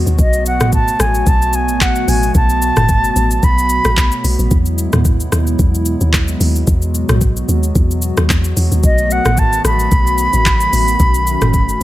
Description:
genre	amapiano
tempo	111 BPM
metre	4/4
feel	swing 55% on 16ths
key	unclear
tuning	A4 = 440 Hz
part	hollow soft pad	sustained chords	0.0-11.8 s	B2 to F#4	-21 LUFS	equal	chorus, sidechain pumping
part	deep log drum bass	bass	0.0-11.8 s	F#1 to E2	-16 LUFS	equal	none
part	smooth R&B drum kit	drums	0.1-11.8 s	handclaps, hi-hat, kick drum, rim click, shaker, toms	-15 LUFS	equal	none
part	concert flute	melody	0.2-4.2, 8.8-11.8 s	D#5 to B5	-16 LUFS	equal	ping-pong delay
room	little or no reverb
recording	none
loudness	-11 LUFS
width	side -15 dB against mid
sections	0.0-11.8 A section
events	none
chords	0.2 B5; 4.5 Emaj9; 8.8 B7

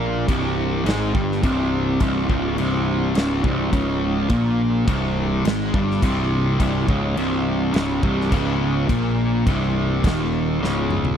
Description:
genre	stoner and doom metal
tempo	105 BPM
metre	4/4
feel	straight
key	unclear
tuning	A4 = 440 Hz
part	fuzz guitar	riff	0.0-11.2 s	C2 to Bb3	-20 LUFS	equal	distortion
part	fuzz picked electric bass	bass	0.0-11.1 s	C1 to Bb1	-25 LUFS	equal	overdrive
part	big rock drum kit	drums	0.3-11.2 s	crash cymbal, kick drum, snare drum, toms	-24 LUFS	equal	none
room	little or no reverb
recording	dry, close 1970s-style studio recording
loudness	-18 LUFS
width	side -8 dB against mid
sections	0.0-11.2 A section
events	drum fill 10.6-11.2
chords	0.0 Cm

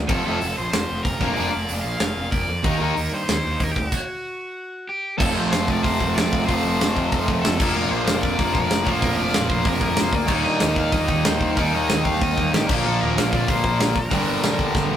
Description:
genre	punk rock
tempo	188 BPM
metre	4/4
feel	straight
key	unclear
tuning	A4 = 440 Hz
part	fuzz picked electric bass	bass	0.0-15.0 s	F1 to G2	-27 LUFS	equal	overdrive
part	crunchy overdriven guitar	melody	0.1-15.0 s	F#4 to F5	-28 LUFS	equal	none
part	distorted electric guitar	riff	0.1-2.9, 5.2-15.0 s	F2 to Eb4	-24 LUFS	left 4 dB	overdrive
part	high-gain distorted guitar	riff	0.1-15.0 s	F2 to Eb4	-29 LUFS	right 1 dB	distortion
part	sludgy distorted guitar	riff	0.1-2.9, 5.2-15.0 s	G2 to G4	-26 LUFS	right 5 dB	overdrive
part	big rock drum kit	drums	0.1-14.8 s	crash cymbal, hi-hat, kick drum, snare drum	-24 LUFS	equal	none
room	moderate studio reverb, RT60 0.6 s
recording	rough rehearsal-room recording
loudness	-19 LUFS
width	side -10 dB against mid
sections	0.0-5.2 A section; 5.2-15.0 B section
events	half time 0.0-5.2; stop 3.9-5.2; drum fill 14.8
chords	0.1 F; 1.2 Bb/F; 2.6 Eb; 3.8 D; 5.2 F; 7.6 Bb/F; 10.3 Eb; 12.7 Bb; 14.1 Gm

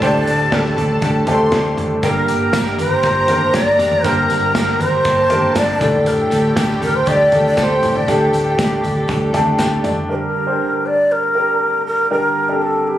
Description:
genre	piano-driven pop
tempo	119 BPM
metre	4/4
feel	straight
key	G minor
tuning	A4 = 440 Hz
part	breathy shakuhachi	melody	0.0-13.0 s	G4 to Eb5	-17 LUFS	equal	none
part	warm studio violin section	second line	0.0-9.8 s	G4 to C6	-25 LUFS	left 1 dB	none
part	clear baby grand piano	accompaniment	0.0-13.0 s	G2 to A5	-20 LUFS	equal	none
part	warm analog pad	sustained chords	0.0-10.1 s	D3 to A4	-30 LUFS	left 1 dB	none
part	direct-recorded clean electric guitar	riff	0.0-10.6 s	G2 to Bb4	-23 LUFS	right 4 dB	tremolo
part	vintage muted fingered electric bass	bass	0.0-10.1 s	F1 to D2	-22 LUFS	equal	none
part	modern studio drum kit	drums	0.0-10.0 s	hi-hat, kick drum, snare drum, toms	-23 LUFS	equal	none
part	tambourine	percussion	2.0-10.0 s	none	-36 LUFS	left 1 dB	none
room	light reverb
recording	recorded on a phone in the room, studio reverb, compression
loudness	-14 LUFS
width	side -12 dB against mid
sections	0.0-10.1 A section; 10.1-13.0 B section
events	grand piano fill 9.1-10.1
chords	0.0 Dsus4; 2.0 Gm; 5.8 Dsus4; 10.1 Gm

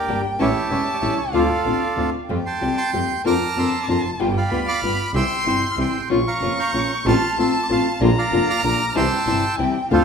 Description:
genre	tango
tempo	190 BPM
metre	3/4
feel	rubato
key	F major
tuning	A4 = 440 Hz
part	bandoneon	melody	0.0-10.0 s	E4 to G6	-24 LUFS	right 4 dB	none
part	warm violin	second line	0.0-10.0 s	F5 to Db6	-25 LUFS	left 1 dB	none
part	nylon-string guitar	accompaniment	0.1-10.0 s	C3 to G4	-22 LUFS	left 4 dB	none
part	muted studio string section	stabs	0.1-9.7 s	A3 to Bb4	-31 LUFS	right 3 dB	none
part	bright double bass	bass	0.1-10.0 s	E1 to F2	-26 LUFS	right 3 dB	none
room	wet large studio reverb, RT60 1.4 s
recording	minimal, uncompressed stereo recording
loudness	-18 LUFS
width	side -6 dB against mid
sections	0.0-2.3 A section; 2.3-9.9 B section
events	none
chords	0.4 A7; 1.3 Dm7; 2.3 Fadd9; 3.3 Bbadd9/F; 4.2 G7; 5.1 C; 6.1 Bbm; 7.1 F/A; 8.0 Bb; 9.0 C

